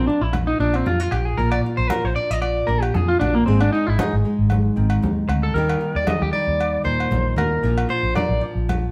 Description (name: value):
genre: highlife guitar band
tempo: 115 BPM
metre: 4/4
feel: swing 54% on 16ths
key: Bb mixolydian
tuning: A4 = 440 Hz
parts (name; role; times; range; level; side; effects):
- nylon-string guitar; accompaniment; 0.0-8.9 s; Ab2 to Bb4; -28 LUFS; equal; none
- electric guitar at the edge of break-up; arpeggios; 0.0-8.4 s; Bb3 to Eb5; -24 LUFS; equal; none
- fingered electric bass; bass; 0.0-8.9 s; Ab1 to F2; -24 LUFS; equal; none
- agogo bells; percussion; 0.3-8.8 s; none; -34 LUFS; equal; none
- congas; percussion; 0.3-8.8 s; none; -30 LUFS; equal; none
room: moderate large studio reverb, RT60 0.9 s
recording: band playing live in one room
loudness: -20 LUFS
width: mono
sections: 0.0-8.9 A section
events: clean electric guitar solo 0.0-8.9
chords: 0.0 Bb; 3.5 Ab; 5.6 Eb; 7.6 Bb